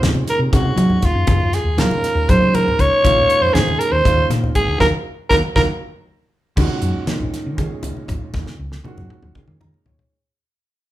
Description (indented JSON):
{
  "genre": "electric jazz fusion",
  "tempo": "238 BPM (eighths)",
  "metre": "7/8",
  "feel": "straight",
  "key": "Eb dorian",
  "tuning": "A4 = 439 Hz",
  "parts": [
    { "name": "growling soprano saxophone", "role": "melody", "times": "0.0-5.6 s", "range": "F4 to Db5", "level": "-17 LUFS", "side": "equal", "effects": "none" },
    { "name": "clear baby grand piano", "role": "accompaniment", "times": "0.0-10.1 s", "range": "Bb2 to Bb5", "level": "-26 LUFS", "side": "right 3 dB", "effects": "none" },
    { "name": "hollow-body short-scale fingered electric bass", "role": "bass", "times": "0.0-10.0 s", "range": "Ab1 to Gb3", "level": "-20 LUFS", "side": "equal", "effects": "none" },
    { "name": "damped 70s drum kit", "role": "drums", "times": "0.0-10.1 s", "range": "crash cymbal, hi-hat, kick drum, snare drum, toms", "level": "-20 LUFS", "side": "equal", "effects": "none" },
    { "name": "congas", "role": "percussion", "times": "0.0-10.0 s", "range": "none", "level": "-25 LUFS", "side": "left 1 dB", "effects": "none" }
  ],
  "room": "moderate large studio reverb, RT60 0.8 s",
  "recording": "band playing live in one room",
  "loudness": "-15 LUFS",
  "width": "side -14 dB against mid",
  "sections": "0.0-6.6 A section; 6.6-10.1 B section",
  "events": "band accent 4.8-6.6; grand piano fill 5.8-6.6, 9.4-10.1; fade-out 6.6-10.1; drum fill 8.3-10.1",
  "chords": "0.0 Gb69; 3.0 Bbm7; 4.8 Ebm; 6.6 Ebm7",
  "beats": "0.03 0.28 0.53 0.79 1.04 | 1.29 1.54 1.79 2.04 2.29 2.55 2.80 | 3.05 3.30 3.55 3.80 4.05 4.31 4.56 | 4.81 5.06 5.31 5.57 5.82 6.07 6.32 | 6.57 6.83 7.08 7.33 7.58 7.83 8.09 | 8.34 8.59 8.85 9.10 9.35 9.61 9.86"
}